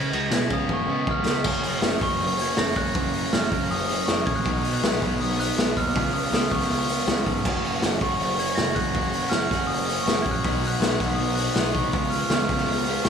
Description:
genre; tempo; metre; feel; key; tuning
indie rock; 160 BPM; 4/4; straight; F# major; A4 = 437 Hz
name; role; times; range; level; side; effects
glockenspiel with rubber mallets; melody; 0.0-13.1 s; C#6 to A#6; -28 LUFS; equal; digital delay
crunchy overdriven guitar; riff; 0.0-13.1 s; F#2 to F#4; -26 LUFS; right 1 dB; none
growling picked electric bass; bass; 0.0-13.1 s; F#1 to C#3; -31 LUFS; equal; overdrive
raw garage drum kit; drums; 0.1-13.1 s; crash cymbal, hi-hat, kick drum, ride cymbal, snare drum; -25 LUFS; equal; none
room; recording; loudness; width
small room ambience; studio reverb; -21 LUFS; side -7 dB against mid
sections
0.0-1.5 A section; 1.5-13.1 B section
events
glockenspiel solo 0.0-1.5; drum fill 0.7-1.5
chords
0.0 C#7; 1.5 F#; 4.5 B; 6.0 C#7; 7.5 F#; 10.4 B; 11.9 C#7

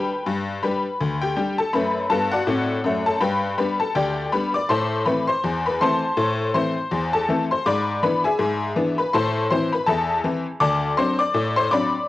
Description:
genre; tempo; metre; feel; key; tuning
ragtime piano; 81 BPM; 2/4; swing 58% on 16ths; G major; A4 = 442 Hz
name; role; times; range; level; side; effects
tack piano; solo; 0.0-12.1 s; D2 to D6; -19 LUFS; left 2 dB; cassette tape
room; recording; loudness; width
moderate spring reverb, RT60 2.0 s; home recording on cassette; -19 LUFS; side -16 dB against mid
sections
0.0-12.1 A section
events
none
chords
0.0 G; 1.7 D7/F#; 3.2 G; 4.7 Am; 7.7 E7/G#; 9.1 Am; 10.6 D7

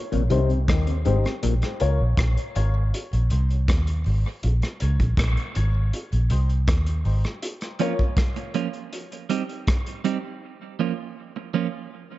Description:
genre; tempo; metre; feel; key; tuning
dub reggae; 80 BPM; 4/4; straight; Bb dorian; A4 = 440 Hz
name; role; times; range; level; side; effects
mellow tonewheel organ; accompaniment; 0.1-7.3 s; Bb2 to Eb4; -33 LUFS; equal; slow rotary speaker, high-pass filter, dub echo
mellow clav; riff; 0.1-1.5 s; Ab2 to Eb3; -29 LUFS; left 5 dB; phaser, dub echo
vintage muted fingered electric bass; bass; 0.1-7.2 s; Ab1 to Eb2; -21 LUFS; equal; none
crunchy breakbeat drum kit; drums; 0.1-10.2 s; hi-hat, kick drum, rim click; -26 LUFS; equal; none
dark upright piano; stabs; 0.3-8.0 s; Eb4 to Db5; -31 LUFS; left 5 dB; high-pass filter, dub echo
clean electric guitar; accompaniment; 7.8-11.7 s; F3 to G4; -27 LUFS; right 9 dB; dub echo
room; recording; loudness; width
light reverb, small room ambience; dark, warm production, nothing above 7.9 kHz; -21 LUFS; side -16 dB against mid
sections
0.0-7.4 A section; 7.4-12.2 B section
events
break 0.0-7.4, 7.4-12.2; filter sweep 0.0-7.4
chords
0.0 Cm; 1.4 Bbm; 2.9 Cm; 4.4 Bbm; 5.9 Cm; 7.4 Bbm; 8.9 Cm; 10.4 Bbm

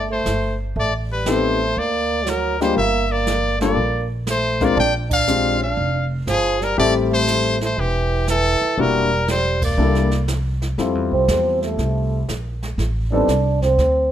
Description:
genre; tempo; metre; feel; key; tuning
jazz, small-group swing and bop; 120 BPM; 4/4; swing 68% on 8ths; F major from 10.8 s; A4 = 441 Hz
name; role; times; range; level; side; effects
brilliant trumpet; melody; 0.0-10.3 s; G4 to G5; -21 LUFS; left 2 dB; none
trombone with cup mute; second line; 0.0-14.1 s; E3 to D4; -22 LUFS; right 4 dB; none
upright bass; bass; 0.0-14.1 s; E1 to F2; -22 LUFS; equal; none
jazz brush drum kit; drums; 0.3-14.1 s; brushed snare drum, crash cymbal, hi-hat, kick drum, snare drum; -28 LUFS; right 1 dB; none
warm grand piano; accompaniment; 1.3-13.3 s; G3 to Bb4; -22 LUFS; left 5 dB; none
room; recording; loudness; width
light reverb; none; -17 LUFS; side -10 dB against mid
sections
0.0-10.8 A section; 10.8-14.1 B section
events
band accent 5.0, 9.5; trombone solo 10.8-14.1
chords
0.0 C5; 0.8 Am7b5; 1.8 Daug; 2.8 Gm7; 4.8 Bb13; 6.8 Am7; 8.8 Em7b5; 9.8 C13; 10.8 Fmaj9; 12.8 Am7b5

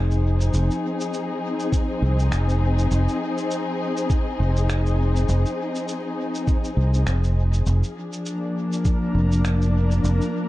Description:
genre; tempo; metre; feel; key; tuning
ambient dub; 101 BPM; 4/4; swing 57% on 16ths; F dorian; A4 = 440 Hz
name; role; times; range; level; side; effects
dark studio string section; sustained chords; 0.0-10.5 s; F3 to Eb5; -25 LUFS; left 2 dB; none
fingered electric bass; bass; 0.0-10.2 s; F1 to C2; -19 LUFS; equal; none
electronic cabasa and finger snaps; drums; 0.1-10.3 s; none; -36 LUFS; equal; dub echo
electronic kick drum; drums; 1.7-9.0 s; none; -21 LUFS; equal; none
backwards swelling texture; texture; 8.4-10.5 s; Bb3 to Bb4; -35 LUFS; right 2 dB; built-in reverb
room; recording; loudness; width
light reverb; dark, warm production; -20 LUFS; side -16 dB against mid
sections
0.0-10.5 A section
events
none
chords
0.0 Fm7; 7.7 Bb/F

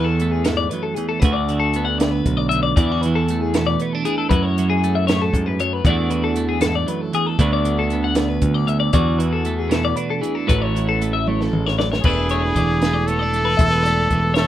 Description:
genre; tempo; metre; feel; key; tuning
math rock and midwest emo; 78 BPM (dotted quarters); 6/8; straight; unclear; A4 = 438 Hz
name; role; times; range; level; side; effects
twelve-string electric guitar; accompaniment; 0.0-14.5 s; D2 to F#4; -23 LUFS; right 6 dB; none
twelve-string electric guitar; arpeggios; 0.0-14.5 s; G#4 to F#5; -23 LUFS; left 8 dB; none
modern bright picked electric bass; bass; 0.0-14.5 s; E1 to F#2; -21 LUFS; equal; none
compact cocktail drum kit; drums; 0.2-14.5 s; crash cymbal, hi-hat, kick drum, snare drum, toms; -21 LUFS; equal; none
brilliant trumpet; melody; 12.0-14.5 s; G#4 to A4; -20 LUFS; left 1 dB; slapback echo
room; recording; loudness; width
little or no reverb; rough home demo mix; -17 LUFS; side -12 dB against mid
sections
0.0-12.0 A section; 12.0-14.5 B section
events
drum fill 11.3-12.0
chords
0.0 Esus4; 1.2 D6; 2.8 E9sus4; 4.3 F#m9; 5.8 E9sus4; 7.4 D6; 8.9 E9sus4; 10.5 A6; 12.0 E7sus4

